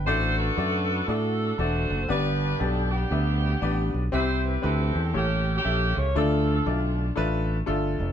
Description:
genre	gospel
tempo	118 BPM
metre	4/4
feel	swing 62% on 8ths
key	unclear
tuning	A4 = 438 Hz
part	clear grand piano	accompaniment	0.0-8.1 s	G2 to G5	-28 LUFS	left 4 dB	none
part	fingered electric bass	bass	0.0-8.1 s	E1 to A2	-26 LUFS	right 1 dB	none
part	warm saxophone section	melody	0.1-7.1 s	Bb3 to C#5	-28 LUFS	right 1 dB	none
room	moderate studio reverb, RT60 0.6 s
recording	band playing live in one room, nothing above 10.7 kHz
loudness	-23 LUFS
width	side -9 dB against mid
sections	0.0-8.1 A section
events	none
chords	0.1 D/A; 2.1 G; 4.1 C; 5.1 A7b9; 6.2 Dm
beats	| 0.07 0.57 1.08 1.59 | 2.10 2.61 3.12 3.62 | 4.13 4.64 5.15 5.65 | 6.16 6.67 7.17 7.68

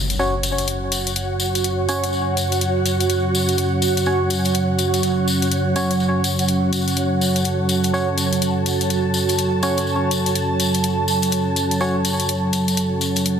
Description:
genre	bass house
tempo	124 BPM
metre	4/4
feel	swing 62% on 16ths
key	F# minor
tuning	A4 = 440 Hz
part	dark analog pad	sustained chords	0.0-13.4 s	F#3 to A5	-21 LUFS	right 1 dB	chorus
part	impact	sound effects	0.0-1.2 s	none	-28 LUFS	equal	none
part	ethereal airy pad	texture	0.2-13.4 s	F#4 to A5	-24 LUFS	right 2 dB	ensemble chorus, built-in reverb, phaser
part	electronic hi-hat	drums	0.1-13.4 s	none	-25 LUFS	left 5 dB	overdrive
part	tambourine	percussion	0.1-13.4 s	none	-27 LUFS	left 4 dB	none
part	percussive organ stab	stabs	0.2-12.0 s	C#4 to C#5	-25 LUFS	equal	chorus, digital delay
room	wet lush hall reverb, RT60 2.2 s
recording	dense, heavily limited modern master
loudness	-17 LUFS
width	side -8 dB against mid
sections	0.0-13.4 A section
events	impact 0.0-1.2; filter sweep on analog synth pad 0.0-13.4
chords	0.0 F#5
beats	0.19 0.68 | 1.16 1.65 2.13 2.61 | 3.10 3.58 4.07 4.55 | 5.03 5.52 6.00 6.48 | 6.97 7.45 7.94 8.42 | 8.90 9.39 9.87 10.36 | 10.84 11.32 11.81 12.29 | 12.77 13.26

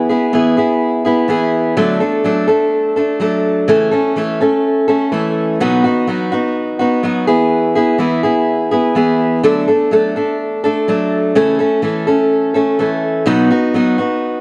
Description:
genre	rock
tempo	125 BPM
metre	4/4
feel	straight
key	E major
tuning	A4 = 438 Hz
part	picked steel-string acoustic guitar	solo	0.0-14.4 s	B2 to A4	-15 LUFS	equal	none
room	light reverb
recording	none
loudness	-15 LUFS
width	mono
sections	0.0-1.8 A section; 1.8-14.4 B section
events	none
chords	0.0 E; 1.8 D; 3.7 A/C#; 5.6 B; 7.3 E; 9.4 D; 11.4 A/C#; 13.3 B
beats	0.33 0.81 1.29 | 1.76 2.24 2.72 3.20 | 3.68 4.16 4.64 5.12 | 5.60 6.08 6.56 7.04 | 7.52 8.00 8.48 8.96 | 9.44 9.91 10.39 10.87 | 11.35 11.83 12.31 12.79 | 13.27 13.75 14.23

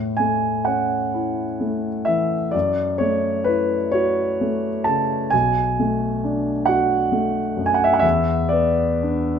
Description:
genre	classical, romantic nocturne for solo piano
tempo	39-45 BPM (dotted quarters)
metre	12/8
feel	rubato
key	A major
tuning	A4 = 440 Hz
part	warm concert grand piano	solo	0.0-9.4 s	B1 to A5	-18 LUFS	equal	none
room	moderate recital hall reverb, RT60 1.4 s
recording	close, detailed microphones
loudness	-18 LUFS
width	side -7 dB against mid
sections	0.0-9.4 A section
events	none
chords	0.0 A; 2.5 F#m7; 5.3 Bm7; 8.0 E7(no3)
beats	1.15 2.54 3.94 | 5.32 6.69 8.03

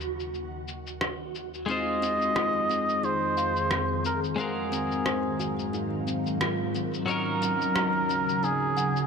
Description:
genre	sunset chillout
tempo	89 BPM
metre	4/4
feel	swing 56% on 16ths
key	Eb dorian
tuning	A4 = 440 Hz
part	twelve-string electric guitar	accompaniment	0.0-9.1 s	Gb3 to F5	-32 LUFS	left 1 dB	auto-pan, ping-pong delay
part	ethereal airy pad	sustained chords	0.0-9.1 s	Eb2 to F5	-32 LUFS	right 1 dB	ensemble chorus, built-in reverb, phaser, vintage 12-bit sampler grit
part	electronic cabasa and rim click	drums	0.0-9.1 s	none	-33 LUFS	left 1 dB	low-pass filter on perc, low-pass filter on snare, low-pass filter on room
part	trumpet with cup mute	melody	1.7-9.1 s	Ab4 to Eb5	-28 LUFS	right 1 dB	digital delay
part	kalimba	arpeggios	1.7-9.1 s	C4 to Gb5	-34 LUFS	left 3 dB	vintage 12-bit sampler grit, ping-pong delay
room	wet plate reverb, RT60 2.8 s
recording	bright 1980s-style digital production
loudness	-25 LUFS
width	side -5 dB against mid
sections	0.0-9.1 A section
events	none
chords	0.0 Ebm7; 1.7 Fm7; 4.4 Ab13; 7.1 Ebm7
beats	0.34 1.01 | 1.69 2.36 3.04 3.71 | 4.38 5.06 5.73 6.41 | 7.08 7.75 8.43

